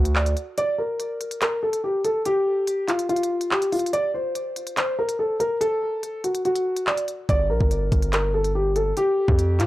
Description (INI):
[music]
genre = hip hop, drill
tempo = 143 BPM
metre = 4/4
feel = half-time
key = G minor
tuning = A4 = 439 Hz
[part]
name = dark concert grand piano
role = melody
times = 0.0-9.7 s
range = F4 to D5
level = -22 LUFS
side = equal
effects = low-pass filter, tape echo
[part]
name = distorted 808-style bass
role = bass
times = 0.0-0.3, 7.3-9.7 s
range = G1 to A2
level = -23 LUFS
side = equal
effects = distortion
[part]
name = drill drum kit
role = drums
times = 0.1-9.7 s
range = handclaps, hi-hat, kick drum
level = -24 LUFS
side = equal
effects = none
[sound]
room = little or no reverb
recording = dry, gritty hardware recording, cassette tape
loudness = -21 LUFS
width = side -16 dB against mid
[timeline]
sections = 0.0-9.7 A section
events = break 0.6-7.3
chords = 0.0 N.C.; 7.3 Gm; 9.0 Fsus2